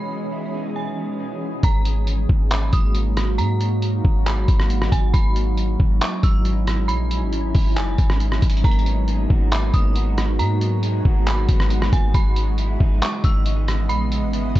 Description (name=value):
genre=hip hop, atmospheric cloud-rap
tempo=137 BPM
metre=4/4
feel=half-time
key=G# minor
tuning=A4 = 440 Hz
part: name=dark detuned synth bell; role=melody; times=0.0-14.6 s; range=G#5 to E6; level=-31 LUFS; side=right 3 dB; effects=chorus, tremolo, tape echo
part: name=shimmering ambient pad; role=sustained chords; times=0.0-14.6 s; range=B2 to D#5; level=-27 LUFS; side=right 1 dB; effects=chorus, built-in reverb, sidechain pumping
part: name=electric guitar at the edge of break-up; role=arpeggios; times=0.0-1.6, 8.6-14.6 s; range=G#3 to G#4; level=-32 LUFS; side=right 1 dB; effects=ensemble chorus, tape echo
part: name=clean 808-style bass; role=bass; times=1.6-14.6 s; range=F#1 to G#2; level=-20 LUFS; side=equal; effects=none
part: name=lo-fi sampler-style drum kit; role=drums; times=1.6-14.6 s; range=handclaps, hi-hat, kick drum, rim click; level=-21 LUFS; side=equal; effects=none
room=little or no reverb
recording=dry, gritty hardware recording, nothing above 7.8 kHz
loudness=-17 LUFS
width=side -15 dB against mid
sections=0.0-1.6 A section; 1.6-14.6 B section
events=none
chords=0.0 C#m9; 1.6 G#m9; 5.1 C#m9/G#; 8.6 G#m9; 12.1 C#m9/G#